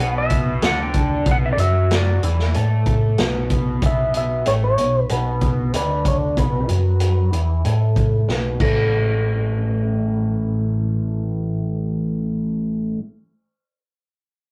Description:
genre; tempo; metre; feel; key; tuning
psychedelic rock; 94 BPM; 4/4; straight; A major; A4 = 438 Hz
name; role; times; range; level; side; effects
clean lap steel guitar; melody; 0.0-12.3 s; A4 to G5; -26 LUFS; equal; low-pass filter
overdriven electric guitar; riff; 0.0-13.0 s; A2 to A4; -27 LUFS; equal; phaser, low-pass filter
picked electric bass; bass; 0.0-12.9 s; A1 to A2; -23 LUFS; equal; none
vintage drum kit; drums; 0.3-8.8 s; crash cymbal, hi-hat, kick drum, snare drum; -25 LUFS; equal; none
room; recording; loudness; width
moderate studio reverb, RT60 0.5 s; rough rehearsal-room recording, tube saturation; -20 LUFS; mono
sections
0.0-8.9 A section; 8.9-11.5 B section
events
filter sweep 0.0-8.9; drum fill 8.3-8.9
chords
0.0 B5; 8.6 A

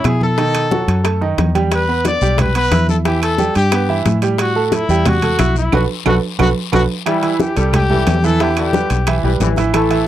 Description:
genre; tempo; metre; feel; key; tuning
latin, salsa; 180 BPM; 4/4; straight; E minor; A4 = 440 Hz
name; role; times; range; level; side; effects
clear trumpet; melody; 0.0-10.1 s; E4 to D5; -19 LUFS; left 3 dB; none
bright grand piano; accompaniment; 0.0-10.1 s; D#3 to E6; -19 LUFS; right 6 dB; none
fingered electric bass; bass; 0.0-10.1 s; A1 to B2; -17 LUFS; left 1 dB; none
bongos; percussion; 0.0-10.1 s; none; -22 LUFS; left 8 dB; none
congas; percussion; 0.0-10.1 s; none; -22 LUFS; equal; none
timbales; percussion; 0.0-10.1 s; none; -26 LUFS; right 6 dB; none
claves; percussion; 0.1-9.9 s; none; -28 LUFS; right 15 dB; none
guiro; percussion; 1.7-10.1 s; none; -32 LUFS; left 19 dB; none
bright trombone section; second line; 7.1-10.0 s; D3 to A3; -22 LUFS; left 9 dB; none
room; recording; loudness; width
little or no reverb; dry, close 1970s-style studio recording; -13 LUFS; side -12 dB against mid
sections
0.0-7.1 A section; 7.1-10.1 B section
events
band accent 5.7-7.1; drum fill 6.4-7.1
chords
0.4 B7; 1.7 Em7; 3.1 G69; 4.4 Asus2; 5.7 B5; 7.1 Am7; 8.4 Em7

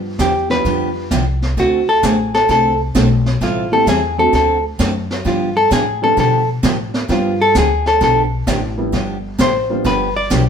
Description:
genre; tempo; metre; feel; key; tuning
country, western swing; 130 BPM; 4/4; swing 67% on 8ths; unclear; A4 = 440 Hz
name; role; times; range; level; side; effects
dark upright piano; accompaniment; 0.0-9.8 s; F3 to G4; -22 LUFS; right 2 dB; none
upright bass; bass; 0.0-10.5 s; G1 to B2; -20 LUFS; left 1 dB; none
hollow-body jazz guitar; melody; 0.2-10.5 s; F4 to D5; -15 LUFS; left 1 dB; none
picked steel-string acoustic guitar; accompaniment; 0.2-10.4 s; D3 to A4; -22 LUFS; right 3 dB; none
vintage brush drum kit; drums; 0.2-10.5 s; brushed snare drum, hi-hat, kick drum, snare drum; -20 LUFS; right 1 dB; none
room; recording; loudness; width
moderate studio reverb, RT60 0.9 s; band playing live in one room; -13 LUFS; side -7 dB against mid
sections
0.0-10.5 A section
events
hollow-body jazz guitar solo 0.0-10.5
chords
0.0 G7; 1.6 D7; 3.4 Am7; 4.3 D7; 5.3 G7

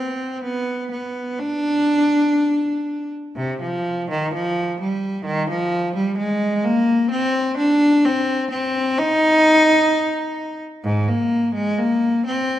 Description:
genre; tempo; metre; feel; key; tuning
classical, baroque-style suite movement for unaccompanied cello; 64 BPM; 4/4; rubato; C minor; A4 = 441 Hz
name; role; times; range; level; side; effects
clear cello; solo; 0.0-12.6 s; Ab2 to Eb4; -17 LUFS; equal; none
room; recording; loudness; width
wet recital hall reverb, RT60 1.8 s; none; -17 LUFS; side -12 dB against mid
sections
0.0-12.6 A section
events
none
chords
none

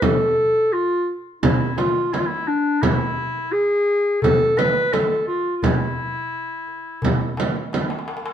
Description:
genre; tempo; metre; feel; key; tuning
Turkish makam ensemble; 86 BPM; 4/4; straight; E makam hicaz; A4 = 439 Hz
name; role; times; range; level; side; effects
warm clarinet; melody; 0.0-7.7 s; D4 to B4; -20 LUFS; left 1 dB; none
darbuka; percussion; 0.0-8.3 s; none; -26 LUFS; left 1 dB; none
frame drum; percussion; 0.0-7.9 s; none; -22 LUFS; right 2 dB; none
room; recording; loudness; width
moderate stone room reverb, RT60 1.0 s; band playing live in one room; -18 LUFS; side -9 dB against mid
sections
0.0-8.3 A section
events
drum fill 7.7-8.3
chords
none

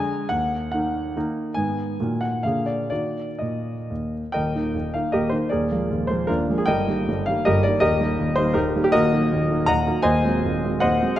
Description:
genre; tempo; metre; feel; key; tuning
classical, romantic triple-time dance for piano with dotted rhythms; 116-172 BPM; 3/4; rubato; Eb minor, Eb major from 4.4 s; A4 = 436 Hz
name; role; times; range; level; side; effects
clear concert grand piano; solo; 0.0-11.2 s; Eb1 to A#5; -20 LUFS; equal; none
room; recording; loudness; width
moderate concert hall reverb, RT60 1.8 s; none; -20 LUFS; side -12 dB against mid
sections
0.0-4.4 A section; 4.4-11.2 B section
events
none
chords
0.3 Ebm; 1.6 Abm; 2.0 Ebm/Bb; 2.4 Bb7; 2.9 Ebm; 4.4 Eb; 5.5 Bb7/Eb; 6.7 Eb/G; 7.8 Eb; 8.9 D#m; 10.1 G#7/D#

